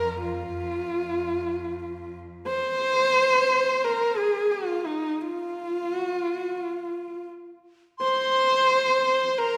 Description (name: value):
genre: mongolian traditional, Mongolian folk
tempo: free time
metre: none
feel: none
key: F yu mode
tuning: A4 = 440 Hz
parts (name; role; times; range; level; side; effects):
- clear horsehead fiddle; melody; 0.0-9.6 s; Eb4 to C5; -26 LUFS; equal; none
- clear cello; drone; 0.0-2.5 s; F2; -42 LUFS; equal; none
- bright reedy dizi; second line; 8.0-9.6 s; Bb5 to C6; -28 LUFS; equal; none
room: wet recital hall reverb, RT60 1.8 s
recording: recorded in a church or concert hall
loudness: -25 LUFS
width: mono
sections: 0.0-2.5 A section; 2.5-9.6 B section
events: none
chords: none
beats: free time